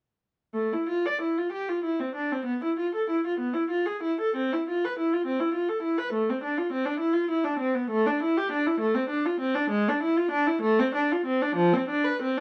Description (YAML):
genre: classical, baroque-style suite movement for unaccompanied viola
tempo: 65 BPM (dotted quarters)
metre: 6/8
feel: uneven beats, rubato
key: A minor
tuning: A4 = 440 Hz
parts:
  - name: rich viola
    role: solo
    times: 0.5-12.4 s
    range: F3 to D5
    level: -27 LUFS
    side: equal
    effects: none
room: light reverb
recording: dark, warm production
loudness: -27 LUFS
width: mono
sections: 0.5-12.4 A section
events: none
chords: none